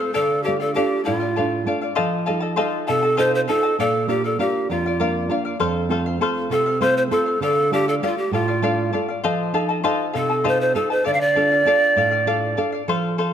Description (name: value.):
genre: andean folk, Andean ensemble.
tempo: 66 BPM (dotted quarters).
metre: 6/8.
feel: straight.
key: D minor.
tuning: A4 = 435 Hz.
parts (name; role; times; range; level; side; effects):
breathy bright large pan pipes; melody; 0.0-12.6 s; F4 to F5; -20 LUFS; right 1 dB; none.
charango; accompaniment; 0.0-13.3 s; A4 to A5; -23 LUFS; left 4 dB; none.
nylon-string guitar; accompaniment; 0.0-13.3 s; F2 to A4; -25 LUFS; right 4 dB; none.
room: moderate scoring stage reverb, RT60 2.0 s.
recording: close, detailed microphones.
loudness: -18 LUFS.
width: side -9 dB against mid.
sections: 0.0-12.9 A section.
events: none.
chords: 0.2 Dm; 2.0 F7; 3.8 Bb; 5.6 F; 7.4 Dm; 9.2 F7; 11.1 Dm.